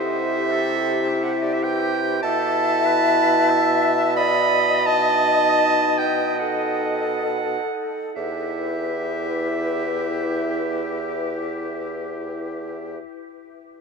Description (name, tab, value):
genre	classical, slow romantic movement for wind quintet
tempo	32-58 BPM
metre	4/4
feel	rubato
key	E minor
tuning	A4 = 440 Hz
part	mellow hollow silver concert flute	melody	0.0-13.0 s	G4 to E5	-26 LUFS	left 6 dB	none
part	warm oboe	second line	0.0-13.0 s	G4 to E5	-28 LUFS	left 4 dB	none
part	bright clarinet	accompaniment	0.0-13.0 s	D5 to B5	-23 LUFS	right 4 dB	none
part	mellow French horn	accompaniment	0.0-13.0 s	D#4 to E4	-29 LUFS	equal	none
part	clear bassoon	bass	0.0-13.0 s	E2 to C3	-27 LUFS	right 4 dB	none
room	wet cathedral reverb, RT60 6.0 s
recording	in a vast, echoing space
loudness	-19 LUFS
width	side -4 dB against mid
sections	0.0-8.2 A section; 8.2-13.8 B section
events	slowing down 0.0-8.2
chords	0.0 C; 2.2 B7sus4; 4.9 B7; 8.2 Em